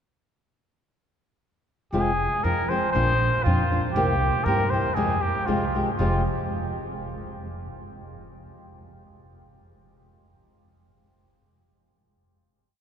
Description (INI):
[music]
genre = mexican folk, mariachi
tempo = 118 BPM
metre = 2/4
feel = straight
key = F dorian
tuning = A4 = 440 Hz
[part]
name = warm trumpet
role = melody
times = 1.9-6.2 s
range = F4 to C5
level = -26 LUFS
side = equal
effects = none
[part]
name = flamenco guitar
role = accompaniment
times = 1.9-6.2 s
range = F2 to G4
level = -27 LUFS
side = left 1 dB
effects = none
[part]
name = upright bass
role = bass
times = 1.9-6.2 s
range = F1 to G2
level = -27 LUFS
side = right 1 dB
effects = none
[sound]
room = wet cathedral reverb, RT60 6.4 s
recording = recorded in a church or concert hall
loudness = -21 LUFS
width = side -8 dB against mid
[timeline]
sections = 1.9-6.0 A section; 6.0-7.0 final chord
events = none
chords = 1.9 Fm; 3.0 Bbadd9; 4.0 C7; 5.0 Fmadd9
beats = | 1.93 2.44 | 2.95 3.46 | 3.96 4.46 | 4.97 5.47 | 5.99